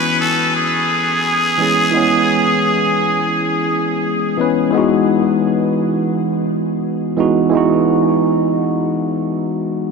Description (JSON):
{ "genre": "chillout", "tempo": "86 BPM", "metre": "4/4", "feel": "swing 58% on 16ths", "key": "unclear", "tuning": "A4 = 438 Hz", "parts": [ { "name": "trumpet with straight mute", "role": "melody", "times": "0.0-4.0 s", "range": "G#4 to B4", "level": "-17 LUFS", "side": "equal", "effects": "analog delay" }, { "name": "tine electric piano", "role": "accompaniment", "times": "0.0-9.9 s", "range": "E3 to G#5", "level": "-15 LUFS", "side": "moving between left 5 dB and right 5 dB", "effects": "auto-pan, tape echo" } ], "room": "wet huge ambient reverb, RT60 7.6 s", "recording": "dreamy mix soaked in reverb", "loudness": "-14 LUFS", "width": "side -4 dB against mid", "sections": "0.0-4.7 A section; 4.7-9.9 B section", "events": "none", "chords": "0.0 C#m7; 4.7 Emaj9" }